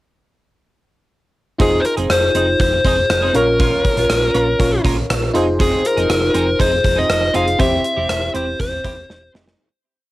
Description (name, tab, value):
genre	1980s-style pop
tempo	120 BPM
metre	4/4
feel	straight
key	F minor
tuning	A4 = 441 Hz
part	dark smooth lead guitar	melody	1.6-9.3 s	Ab4 to F5	-18 LUFS	left 1 dB	overdrive, cassette tape
part	FM electric piano	accompaniment	1.6-9.6 s	C4 to Db5	-21 LUFS	left 1 dB	chorus
part	twelve-string electric guitar	riff	1.6-9.5 s	C4 to Bb4	-24 LUFS	right 4 dB	analog chorus
part	hollow-body short-scale fingered electric bass	bass	1.6-9.5 s	E1 to Bb1	-23 LUFS	equal	none
part	gated 80s drum kit	drums	1.6-9.6 s	hi-hat, kick drum, rim click, snare drum	-20 LUFS	equal	cassette tape
room	moderate studio ambience, RT60 0.5 s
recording	home recording on cassette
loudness	-14 LUFS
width	side -17 dB against mid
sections	1.6-9.6 verse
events	fade-out 7.6-9.6; drum fill 9.1-9.6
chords	1.6 Fm7; 3.3 Bbm; 5.3 Fm7; 7.6 C/E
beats	| 1.60 2.10 2.60 3.10 | 3.60 4.10 4.60 5.10 | 5.60 6.10 6.60 7.10 | 7.60 8.10 8.60 9.10